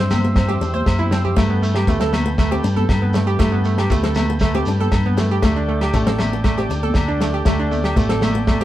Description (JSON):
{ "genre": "highlife guitar band", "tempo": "118 BPM", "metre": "4/4", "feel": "straight", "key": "G major", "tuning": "A4 = 439 Hz", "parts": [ { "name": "flamenco guitar", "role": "accompaniment", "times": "0.0-8.6 s", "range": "A3 to G4", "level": "-26 LUFS", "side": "left 4 dB", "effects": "none" }, { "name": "combo organ", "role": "sustained chords", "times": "0.0-8.6 s", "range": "G4 to G5", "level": "-29 LUFS", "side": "left 1 dB", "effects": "none" }, { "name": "hollow square pluck", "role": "arpeggios", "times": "0.0-8.6 s", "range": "A3 to C5", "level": "-22 LUFS", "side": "right 4 dB", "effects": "chorus" }, { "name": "hollow-body short-scale fingered electric bass", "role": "bass", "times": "0.0-8.6 s", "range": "A1 to G2", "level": "-20 LUFS", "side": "equal", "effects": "none" }, { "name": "warm soul drum kit", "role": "drums", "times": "0.1-8.6 s", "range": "kick drum, snare drum", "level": "-21 LUFS", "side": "equal", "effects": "none" }, { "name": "agogo bells", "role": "percussion", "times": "0.1-8.6 s", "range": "none", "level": "-31 LUFS", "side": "left 4 dB", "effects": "none" }, { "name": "congas", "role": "percussion", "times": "0.1-8.6 s", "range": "none", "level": "-26 LUFS", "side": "left 1 dB", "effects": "none" }, { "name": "shekere", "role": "percussion", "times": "0.1-8.6 s", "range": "none", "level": "-29 LUFS", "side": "right 1 dB", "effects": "none" } ], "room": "moderate studio reverb, RT60 0.7 s", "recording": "band playing live in one room, cassette tape", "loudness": "-16 LUFS", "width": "side -13 dB against mid", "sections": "0.0-8.6 A section", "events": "drum fill 1.0-1.4", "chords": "0.0 C; 1.4 Gadd9; 5.4 Gsus2", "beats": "0.36 0.87 | 1.37 1.88 2.38 2.89 | 3.40 3.90 4.41 4.92 | 5.42 5.93 6.44 6.95 | 7.46 7.97 8.48" }